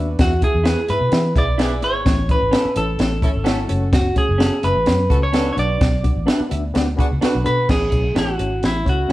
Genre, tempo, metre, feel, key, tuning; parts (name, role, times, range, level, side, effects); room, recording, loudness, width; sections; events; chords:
uptempo 1960s-style soul; 128 BPM; 4/4; straight; A major; A4 = 440 Hz
warm horn section; second line; 0.0-9.1 s; A3 to B4; -29 LUFS; equal
reed electric piano; accompaniment; 0.0-9.1 s; A2 to E5; -27 LUFS; left 3 dB; overdrive, fast tremolo
vintage muted fingered electric bass; bass; 0.0-9.1 s; F#1 to E3; -22 LUFS; equal
clean electric guitar; melody; 0.2-9.1 s; E4 to D5; -21 LUFS; equal
compact cocktail drum kit; drums; 0.2-9.1 s; crash cymbal, hi-hat, kick drum, snare drum; -19 LUFS; equal
electric guitar through a small old amp; stabs; 0.6-9.1 s; C#4 to B4; -27 LUFS; right 3 dB
moderate stone room reverb, RT60 1.0 s; band playing live in one room, cassette tape; -16 LUFS; side -16 dB against mid
0.0-7.7 A section; 7.7-9.1 B section
0.2 E; 2.1 A; 3.7 F#m; 5.6 Bm; 7.7 A